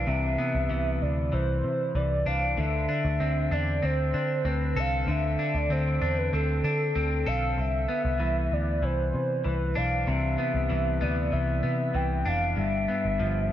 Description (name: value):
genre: dream pop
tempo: 96 BPM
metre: 4/4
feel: straight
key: C major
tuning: A4 = 440 Hz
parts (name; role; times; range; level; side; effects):
- warbly nostalgic lead; melody; 0.0-13.5 s; A4 to G5; -30 LUFS; right 1 dB; chorus, digital delay
- clean electric guitar; arpeggios; 0.0-13.5 s; G2 to A4; -28 LUFS; left 2 dB; wide subtle chorus, digital delay
- vintage muted picked electric bass; bass; 0.0-13.5 s; F1 to D3; -28 LUFS; equal; none
room: light reverb, digital ambience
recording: none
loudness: -24 LUFS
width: side -11 dB against mid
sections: 0.0-13.5 A section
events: none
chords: 0.0 Cmaj9; 12.6 G7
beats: | 0.07 0.70 1.32 1.95 | 2.57 3.20 3.82 4.45 | 5.07 5.70 6.32 6.95 | 7.57 8.20 8.82 9.45 | 10.07 10.70 11.32 11.95 | 12.57 13.20